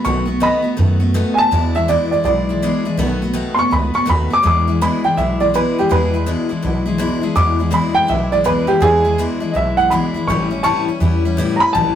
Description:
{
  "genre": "rockabilly",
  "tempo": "164 BPM",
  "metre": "4/4",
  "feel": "swing 64% on 8ths",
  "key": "E mixolydian",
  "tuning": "A4 = 441 Hz",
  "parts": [
    { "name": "dark upright piano", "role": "melody", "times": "0.0-12.0 s", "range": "G4 to D6", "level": "-16 LUFS", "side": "right 1 dB", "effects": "none" },
    { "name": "picked steel-string acoustic guitar", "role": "accompaniment", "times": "0.0-12.0 s", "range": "E2 to F#4", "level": "-19 LUFS", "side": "left 3 dB", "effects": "none" },
    { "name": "upright bass", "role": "bass", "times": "0.1-12.0 s", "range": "A1 to F#2", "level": "-19 LUFS", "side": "right 1 dB", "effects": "none" }
  ],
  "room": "moderate stone room reverb, RT60 0.9 s",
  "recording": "rough rehearsal-room recording, warm saturation",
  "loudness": "-14 LUFS",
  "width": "side -10 dB against mid",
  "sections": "0.0-4.4 A section; 4.4-12.0 B section",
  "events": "upright piano solo 4.4-12.0",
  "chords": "0.0 B7; 1.5 E7; 3.0 B7; 4.4 E7; 10.3 A7"
}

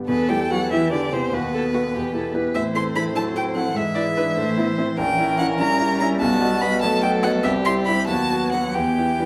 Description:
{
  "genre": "quick classical-period movement for piano quintet",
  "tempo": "98 BPM (dotted quarters)",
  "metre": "6/8",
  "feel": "rubato",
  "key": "E minor",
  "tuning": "A4 = 440 Hz",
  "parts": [
    { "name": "clear baby grand piano", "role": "accompaniment", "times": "0.0-9.3 s", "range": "A#1 to E5", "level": "-26 LUFS", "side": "equal", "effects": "none" },
    { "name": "clear violin", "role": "melody", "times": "0.1-9.3 s", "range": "B4 to C6", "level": "-26 LUFS", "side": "equal", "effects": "none" },
    { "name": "dark cello", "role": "second line", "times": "0.1-9.3 s", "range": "B2 to G3", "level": "-30 LUFS", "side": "equal", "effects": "none" },
    { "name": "rich violin", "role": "second line", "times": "0.1-9.3 s", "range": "F#4 to E5", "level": "-31 LUFS", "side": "equal", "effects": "none" },
    { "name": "dark viola", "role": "accompaniment", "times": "0.1-9.3 s", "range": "G#3 to G4", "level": "-30 LUFS", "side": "equal", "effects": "none" }
  ],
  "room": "wet stone room reverb, RT60 1.0 s",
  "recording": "none",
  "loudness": "-21 LUFS",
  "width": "mono",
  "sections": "0.1-9.3 A section",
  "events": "none",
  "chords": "0.1 Em; 1.3 B7/D#; 1.9 Em; 2.6 Am; 3.8 E7/G#; 4.4 Am; 5.0 A#dim7; 6.2 B7; 7.4 C; 8.1 B7/D#; 8.7 Em"
}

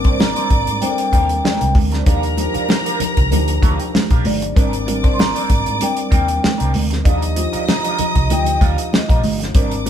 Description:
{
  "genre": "lush 1970s-style soul",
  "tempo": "96 BPM",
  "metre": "4/4",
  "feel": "swing 54% on 16ths",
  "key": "Eb major",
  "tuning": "A4 = 444 Hz",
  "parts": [
    { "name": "warm symphonic string section", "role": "second line", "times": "0.0-9.9 s", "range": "Bb4 to Eb6", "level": "-25 LUFS", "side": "equal", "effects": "none" },
    { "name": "mellow tine electric piano", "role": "accompaniment", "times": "0.0-9.9 s", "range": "F3 to Bb4", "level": "-24 LUFS", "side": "left 2 dB", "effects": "medium stereo tremolo" },
    { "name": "vintage muted fingered electric bass", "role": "bass", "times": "0.0-9.9 s", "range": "G1 to Ab2", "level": "-21 LUFS", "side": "equal", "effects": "none" },
    { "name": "warm soul drum kit", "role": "drums", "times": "0.0-9.9 s", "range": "hi-hat, kick drum, snare drum", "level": "-17 LUFS", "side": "equal", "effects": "none" },
    { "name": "small celesta", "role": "texture", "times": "0.0-4.8, 8.6-9.8 s", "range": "C5 to F5", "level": "-31 LUFS", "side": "left 4 dB", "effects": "none" },
    { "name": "electric guitar at the edge of break-up", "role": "riff", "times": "0.1-9.9 s", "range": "G3 to C5", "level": "-28 LUFS", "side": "right 4 dB", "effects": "wah, spring reverb" },
    { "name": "vibraphone with soft mallets", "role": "melody", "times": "0.2-9.4 s", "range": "Eb5 to C6", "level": "-21 LUFS", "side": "equal", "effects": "none" },
    { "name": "congas", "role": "percussion", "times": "0.2-9.9 s", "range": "none", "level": "-25 LUFS", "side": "right 2 dB", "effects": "none" }
  ],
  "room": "moderate studio reverb, RT60 0.9 s",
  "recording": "band playing live in one room",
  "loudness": "-14 LUFS",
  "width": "side -9 dB against mid",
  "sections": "0.0-9.9 A section",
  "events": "none",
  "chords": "0.0 Abmaj9#11; 2.1 Ebmaj9; 4.6 Abmaj9#11; 7.1 Ebmaj9"
}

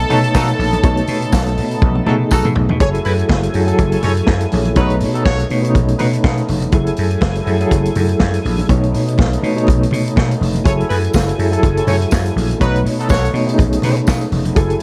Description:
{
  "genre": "disco",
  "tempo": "122 BPM",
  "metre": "4/4",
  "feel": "swing 56% on 16ths",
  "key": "unclear",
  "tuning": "A4 = 441 Hz",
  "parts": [
    { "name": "warm studio string section", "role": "second line", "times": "0.0-2.3 s", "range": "A4 to A5", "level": "-24 LUFS", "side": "equal", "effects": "tape echo" },
    { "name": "reed electric piano", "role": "accompaniment", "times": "0.0-14.8 s", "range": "B2 to C#5", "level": "-21 LUFS", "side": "equal", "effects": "tremolo" },
    { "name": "overdriven tonewheel organ", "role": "sustained chords", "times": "0.0-14.8 s", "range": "F#3 to G#5", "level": "-28 LUFS", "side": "equal", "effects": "chorus vibrato, slow rotary speaker" },
    { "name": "vintage slap bass", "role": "bass", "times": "0.0-14.7 s", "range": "E#1 to B2", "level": "-21 LUFS", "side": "equal", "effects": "none" },
    { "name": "vintage drum kit", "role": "drums", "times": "0.0-14.8 s", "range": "hi-hat, kick drum, snare drum, toms", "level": "-21 LUFS", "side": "equal", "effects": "none" },
    { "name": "clear horn section", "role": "stabs", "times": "0.1-6.1, 10.6-13.9 s", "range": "C#4 to C#5", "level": "-25 LUFS", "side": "equal", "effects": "none" },
    { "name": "congas", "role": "percussion", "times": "0.1-14.6 s", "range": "none", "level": "-28 LUFS", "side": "equal", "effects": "none" },
    { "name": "tambourine", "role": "percussion", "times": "0.3-2.4, 11.1-14.2 s", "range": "none", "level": "-36 LUFS", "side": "equal", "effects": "none" }
  ],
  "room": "studio ambience",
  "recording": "none",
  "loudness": "-15 LUFS",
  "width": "mono",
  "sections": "0.0-2.8 A section; 2.8-14.8 B section",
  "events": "drum fill 1.8-2.8",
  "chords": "0.0 B9; 2.8 F#m9; 4.8 B9; 6.7 F#m9; 8.7 B9; 10.7 F#m9; 12.6 B9"
}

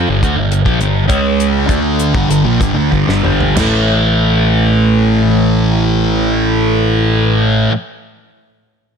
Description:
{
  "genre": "psychedelic rock",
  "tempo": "91-105 BPM",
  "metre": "4/4",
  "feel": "straight",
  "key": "A phrygian dominant",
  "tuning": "A4 = 441 Hz",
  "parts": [
    { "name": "thick fuzz guitar", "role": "riff", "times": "0.0-7.7 s", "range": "G2 to D4", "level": "-12 LUFS", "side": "equal", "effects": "distortion, phaser" },
    { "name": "fingered electric bass", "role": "bass", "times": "0.0-7.7 s", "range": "G1 to D2", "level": "-18 LUFS", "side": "equal", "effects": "none" },
    { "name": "damped 70s drum kit", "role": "drums", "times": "0.2-3.7 s", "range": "crash cymbal, hi-hat, kick drum, snare drum, toms", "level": "-18 LUFS", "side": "equal", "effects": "none" }
  ],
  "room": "little or no reverb",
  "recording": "none",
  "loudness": "-11 LUFS",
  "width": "side -6 dB against mid",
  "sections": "0.0-3.6 A section; 3.6-6.2 B section",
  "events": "slowing down 0.0-3.6; drum fill 2.9-3.6",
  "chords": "0.0 G5; 1.1 C#5; 1.7 G5; 3.6 A5"
}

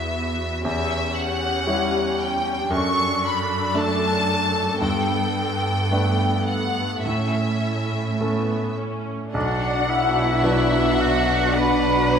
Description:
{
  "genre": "cinematic",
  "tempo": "52-58 BPM",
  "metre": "4/4",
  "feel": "rubato",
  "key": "B minor",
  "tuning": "A4 = 440 Hz",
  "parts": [
    { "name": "clear studio violin section", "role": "melody", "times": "0.0-12.2 s", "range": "E5 to C#6", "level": "-25 LUFS", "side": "left 2 dB", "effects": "none" },
    { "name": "bright grand piano", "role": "accompaniment", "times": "0.0-12.2 s", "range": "B1 to C#5", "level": "-26 LUFS", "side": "left 1 dB", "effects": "none" },
    { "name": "rich studio viola section", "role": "accompaniment", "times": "0.0-12.2 s", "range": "B3 to A4", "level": "-28 LUFS", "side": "right 2 dB", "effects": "none" },
    { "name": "rich studio cello section", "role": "bass", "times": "0.0-12.2 s", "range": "E2 to B2", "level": "-27 LUFS", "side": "right 2 dB", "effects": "none" },
    { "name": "rich studio violin section", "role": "second line", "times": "9.3-12.2 s", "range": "C#5 to F#5", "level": "-25 LUFS", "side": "left 5 dB", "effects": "none" },
    { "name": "warm French horn section", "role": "sustained chords", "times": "9.3-12.2 s", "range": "F#3 to D4", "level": "-25 LUFS", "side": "left 3 dB", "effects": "none" },
    { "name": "rich cello", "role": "melody", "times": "9.4-12.2 s", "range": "D4 to B4", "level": "-25 LUFS", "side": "right 2 dB", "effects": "none" },
    { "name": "warm oboe", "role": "second line", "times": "9.4-12.2 s", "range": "D5 to B5", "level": "-26 LUFS", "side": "right 1 dB", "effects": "none" },
    { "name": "rich studio double bass section", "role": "bass", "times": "9.4-12.2 s", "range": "B1", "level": "-27 LUFS", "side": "right 1 dB", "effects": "none" }
  ],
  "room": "wet scoring stage reverb, RT60 1.6 s",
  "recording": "minimal, uncompressed stereo recording",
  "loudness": "-19 LUFS",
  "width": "side -7 dB against mid",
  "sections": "0.0-9.3 A section; 9.3-12.2 A section",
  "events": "none",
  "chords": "0.0 Eadd9; 0.6 C#dim/E; 2.7 D/F#; 4.8 Gadd9; 7.1 A; 9.3 Bm"
}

